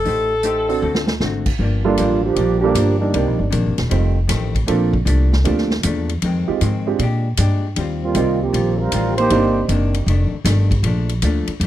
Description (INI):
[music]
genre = jazz, big band swing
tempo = 156 BPM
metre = 4/4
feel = swing 67% on 8ths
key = G minor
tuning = A4 = 440 Hz
[part]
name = mellow saxophone section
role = melody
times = 0.0-1.2 s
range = A4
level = -19 LUFS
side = left 1 dB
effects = none
[part]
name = vintage hollow-body jazz guitar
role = accompaniment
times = 0.0-11.7 s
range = F2 to C5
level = -25 LUFS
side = left 5 dB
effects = none
[part]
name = upright bass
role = bass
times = 0.1-11.7 s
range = Eb1 to Bb2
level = -19 LUFS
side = equal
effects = none
[part]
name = swinging big-band drum kit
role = drums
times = 0.1-11.7 s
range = crash cymbal, hi-hat, kick drum, ride cymbal, snare drum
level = -26 LUFS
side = equal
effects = none
[part]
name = warm baby grand piano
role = accompaniment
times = 0.7-10.1 s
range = G3 to C5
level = -22 LUFS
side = right 8 dB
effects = none
[part]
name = warm trombone section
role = second line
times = 1.8-3.5, 8.0-9.7 s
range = F3 to C5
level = -18 LUFS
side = right 3 dB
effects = none
[sound]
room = studio ambience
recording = dry, close 1970s-style studio recording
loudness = -16 LUFS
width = side -12 dB against mid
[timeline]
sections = 0.0-1.6 A section; 1.6-11.7 B section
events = drum fill 0.8-1.2; trombone section solo 1.6-11.7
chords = 0.1 Am7b5; 0.8 D7; 1.6 Gm7; 3.1 Cm9; 3.9 F7; 4.7 Bbmaj7; 6.2 Fm7; 7.0 Bb6; 7.8 Eb69; 9.3 Cm9; 10.1 F13; 10.8 Bbmaj7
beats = | 0.05 0.44 0.82 1.21 | 1.60 1.98 2.37 2.75 | 3.14 3.52 3.91 4.30 | 4.68 5.07 5.45 5.84 | 6.22 6.61 7.00 7.38 | 7.77 8.15 8.54 8.92 | 9.31 9.69 10.08 10.46 | 10.85 11.23 11.61